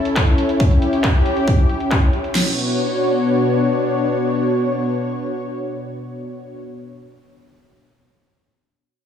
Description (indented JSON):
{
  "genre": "uplifting trance",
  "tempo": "137 BPM",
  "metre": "4/4",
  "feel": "straight",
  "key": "B minor",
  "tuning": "A4 = 440 Hz",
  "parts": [
    { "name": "lush unison pad", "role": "sustained chords", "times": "0.0-6.6 s", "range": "B2 to C#5", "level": "-19 LUFS", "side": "left 1 dB", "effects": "chorus, sidechain pumping" },
    { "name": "big-room dance drum kit", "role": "drums", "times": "0.1-2.3 s", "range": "handclaps, hi-hat", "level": "-26 LUFS", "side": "equal", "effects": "low-pass filter on hats, low-pass filter on snare, low-pass filter on room" },
    { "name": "big-room dance drum kit", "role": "drums", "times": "0.2-2.5 s", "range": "crash cymbal, kick drum, snare drum", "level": "-17 LUFS", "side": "equal", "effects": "none" }
  ],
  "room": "moderate lush hall reverb, RT60 2.1 s",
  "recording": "studio reverb",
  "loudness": "-16 LUFS",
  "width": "side -8 dB against mid",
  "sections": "0.0-2.4 A section; 2.4-5.9 B section",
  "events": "none",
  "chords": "0.0 A; 2.4 Bmadd9",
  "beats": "0.16 | 0.60 1.04 1.48 1.91 | 2.35 2.79 3.23 3.67 | 4.10 4.54 4.98 5.42"
}